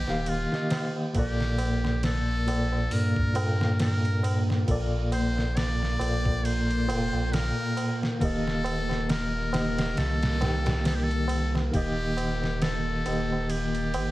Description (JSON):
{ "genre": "trip hop", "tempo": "68 BPM", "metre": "4/4", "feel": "swing 57% on 16ths", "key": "unclear", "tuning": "A4 = 440 Hz", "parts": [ { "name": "trumpet with metal mute", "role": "melody", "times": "0.0-14.1 s", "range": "F4 to D5", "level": "-33 LUFS", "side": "left 1 dB", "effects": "vintage 12-bit sampler grit, tape echo" }, { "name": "tine electric piano", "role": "accompaniment", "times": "0.0-14.1 s", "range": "Bb2 to G5", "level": "-29 LUFS", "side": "equal", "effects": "tremolo" }, { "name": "warm sub bass", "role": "bass", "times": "0.0-14.1 s", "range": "Eb1 to G2", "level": "-29 LUFS", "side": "equal", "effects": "none" }, { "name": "trip hop sampler-style drum kit", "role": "drums", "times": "0.1-14.1 s", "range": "hi-hat, kick drum, ride cymbal, snare drum", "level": "-32 LUFS", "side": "equal", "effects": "none" }, { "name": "tabla", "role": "percussion", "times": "0.1-14.1 s", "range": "none", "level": "-38 LUFS", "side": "right 3 dB", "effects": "none" }, { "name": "string machine, cellos", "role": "sustained chords", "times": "1.1-14.1 s", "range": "Bb3", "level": "-36 LUFS", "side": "left 1 dB", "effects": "phaser, ensemble chorus, vintage 12-bit sampler grit" } ], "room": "digital ambience", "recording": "vinyl crackle", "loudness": "-24 LUFS", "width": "side -17 dB against mid", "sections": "0.0-14.1 A section", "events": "none", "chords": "0.0 Eb; 1.1 Bbmaj7; 8.2 Eb" }